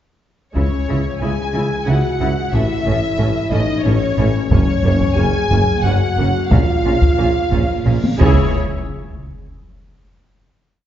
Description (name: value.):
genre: cinematic, epic orchestral film score.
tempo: 90 BPM.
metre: 3/4.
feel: straight.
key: unclear.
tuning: A4 = 440 Hz.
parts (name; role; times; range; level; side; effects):
rich symphonic violin section; melody; 0.5-8.6 s; C#5 to G#5; -26 LUFS; left 4 dB; none.
mellow French horn section; sustained chords; 0.5-8.5 s; C#4 to G#4; -22 LUFS; left 1 dB; none.
rich symphonic violin section; second line; 0.6-8.6 s; C#5 to G#5; -26 LUFS; left 3 dB; none.
warm symphonic viola section; accompaniment; 0.6-8.6 s; G#3 to G#4; -26 LUFS; equal; none.
clear symphonic cello section; bass; 0.6-8.6 s; F#2 to C#3; -22 LUFS; right 1 dB; none.
clear symphonic double bass section; bass; 0.6-8.6 s; F#1 to C#2; -21 LUFS; right 1 dB; none.
clear tuba; bass; 0.6-8.5 s; F#1 to C#2; -24 LUFS; right 1 dB; none.
taiko ensemble; drums; 0.6-9.5 s; none; -18 LUFS; equal; none.
reverse cymbal and impact; sound effects; 8.0-10.3 s; none; -29 LUFS; left 1 dB; none.
room: wet scoring stage reverb, RT60 1.6 s.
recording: heard from further back in the room, nothing above 7.6 kHz.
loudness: -14 LUFS.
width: side -11 dB against mid.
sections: 0.6-8.6 theme; 8.6-10.6 final hit.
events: reverse cymbal 8.0-8.6; drum fill 8.0-8.6; impact 8.6-10.6.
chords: 0.6 C#m; 2.5 A; 4.5 F#; 6.5 A#m; 8.2 C#m; 8.6 N.C..